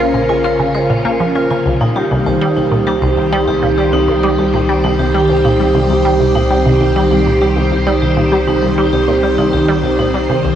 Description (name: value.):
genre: ambient.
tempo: 99 BPM.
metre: 4/4.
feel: straight.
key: unclear.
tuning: A4 = 440 Hz.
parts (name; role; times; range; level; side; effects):
phased string machine; sustained chords; 0.0-10.6 s; Db3 to C5; -17 LUFS; equal; ensemble chorus, phaser.
vibraphone with hard mallets; arpeggios; 0.0-10.6 s; Eb4 to F5; -16 LUFS; right 2 dB; auto-pan, tape echo.
resonant blip pluck; riff; 0.0-10.5 s; C2 to F4; -17 LUFS; equal; phaser, tape echo.
round analog bass; bass; 0.0-10.6 s; Bb1 to C2; -20 LUFS; left 1 dB; none.
room: wet huge ambient reverb, RT60 8.1 s.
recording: worn, warbling old tape, cassette tape, warbly pitch drift.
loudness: -11 LUFS.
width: side -10 dB against mid.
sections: 0.0-10.6 A section.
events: none.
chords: 0.0 Bbmadd9; 1.7 Cm.